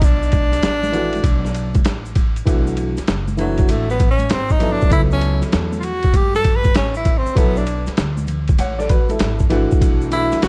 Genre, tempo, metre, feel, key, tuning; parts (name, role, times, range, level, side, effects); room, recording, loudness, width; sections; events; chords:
hip hop, jazz-hop; 98 BPM; 4/4; swing 66% on 16ths; B minor; A4 = 439 Hz
clear tenor saxophone; melody; 0.0-10.5 s; F#3 to B4; -24 LUFS; equal; tape echo
upright bass; bass; 0.0-10.5 s; F#1 to G2; -25 LUFS; equal
boom bap sampler-style drum kit; drums; 0.0-10.5 s; hi-hat, kick drum, ride cymbal, snare drum; -20 LUFS; equal; vintage 12-bit sampler grit
tube shaker and congas; percussion; 0.0-10.5 s; -35 LUFS; equal
warm upright piano; accompaniment; 0.9-10.5 s; E3 to F#5; -24 LUFS; equal
studio ambience; dark, warm production, lossy compression artefacts; -18 LUFS; mono
0.0-2.5 A section; 2.5-10.5 B section
tenor saxophone solo 2.5-10.5
0.0 Bm7; 4.3 G#7b9b13; 4.9 C#m7b5; 7.4 Bm7; 9.2 F#m9/G#; 9.8 Bm7